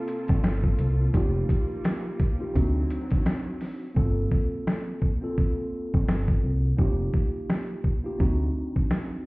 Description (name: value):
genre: hip hop, boom-bap hip-hop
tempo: 85 BPM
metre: 4/4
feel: swing 58% on 16ths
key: G minor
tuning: A4 = 439 Hz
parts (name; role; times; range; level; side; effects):
- mellow tine electric piano; accompaniment; 0.0-9.3 s; Bb3 to A4; -31 LUFS; right 1 dB; medium stereo tremolo, high-pass filter, low-pass filter
- rich studio string section; sustained chords; 0.0-4.0 s; C3 to A4; -39 LUFS; equal; high-pass filter, low-pass filter
- boom bap sampler-style drum kit; drums; 0.1-9.1 s; hi-hat, kick drum, snare drum; -24 LUFS; equal; none
- deep dub fingered electric bass; bass; 0.3-8.5 s; F1 to D2; -24 LUFS; equal; none
room: light reverb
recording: heard muffled through a wall, stone room reverb, vinyl crackle, EQ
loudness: -23 LUFS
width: side -24 dB against mid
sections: 0.0-4.0 A section; 4.0-9.3 B section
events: hi-hats muted 4.0-9.3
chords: 0.0 Gm11; 1.1 F9sus4; 2.6 D7b9; 4.0 Gm11; 6.8 F9sus4; 8.2 D7b9